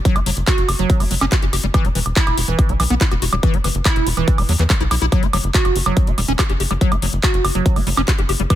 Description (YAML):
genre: psychedelic trance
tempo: 142 BPM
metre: 4/4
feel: straight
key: unclear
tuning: A4 = 436 Hz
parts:
  - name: liquid acid bass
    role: riff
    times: 0.1-8.6 s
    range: E3 to G4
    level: -22 LUFS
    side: moving between left 5 dB and right 7 dB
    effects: chorus, auto-pan, sidechain pumping, tape echo
  - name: big-room dance drum kit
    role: drums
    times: 0.1-8.6 s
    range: handclaps, hi-hat, woodblock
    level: -22 LUFS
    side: right 1 dB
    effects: none
  - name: electronic kick drum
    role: drums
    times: 0.1-8.6 s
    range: none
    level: -16 LUFS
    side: equal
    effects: none
  - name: tight sequencer bass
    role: bass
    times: 0.2-8.5 s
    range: E1 to E2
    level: -20 LUFS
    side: equal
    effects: none
room: little or no reverb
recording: none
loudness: -15 LUFS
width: side -12 dB against mid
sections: 0.0-8.6 A section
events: none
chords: 0.0 F#5; 1.7 E5; 5.1 F#5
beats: | 0.05 0.47 0.90 1.32 | 1.74 2.16 2.59 3.01 | 3.43 3.85 4.28 4.70 | 5.12 5.54 5.97 6.39 | 6.81 7.24 7.66 8.08 | 8.50